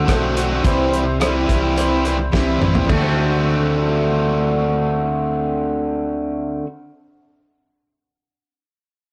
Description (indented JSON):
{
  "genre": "folk rock and heartland rock",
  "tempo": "106 BPM",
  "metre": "4/4",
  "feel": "straight",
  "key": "D mixolydian",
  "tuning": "A4 = 443 Hz",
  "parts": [
    { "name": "picked twelve-string acoustic guitar", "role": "accompaniment", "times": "0.0-6.7 s", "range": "C3 to C5", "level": "-28 LUFS", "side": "equal", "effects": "none" },
    { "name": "crunchy overdriven guitar", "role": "riff", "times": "0.0-6.7 s", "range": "C3 to F#4", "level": "-22 LUFS", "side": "equal", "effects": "spring reverb" },
    { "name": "fingered electric bass", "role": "bass", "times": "0.0-6.6 s", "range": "A1 to D2", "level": "-25 LUFS", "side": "equal", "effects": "none" },
    { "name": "damped 70s drum kit", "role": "drums", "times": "0.1-3.0 s", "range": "crash cymbal, hi-hat, kick drum, rim click, snare drum, toms", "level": "-23 LUFS", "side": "equal", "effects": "none" }
  ],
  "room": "moderate studio reverb, RT60 0.6 s",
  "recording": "rough rehearsal-room recording",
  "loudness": "-19 LUFS",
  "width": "mono",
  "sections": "0.0-2.9 A section; 2.9-5.2 B section",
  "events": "drum fill 2.3-2.9",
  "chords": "0.0 D7; 0.6 C; 2.9 D7",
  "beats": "0.07 | 0.64 1.20 1.77 2.33 | 2.89 3.46 4.02 4.59"
}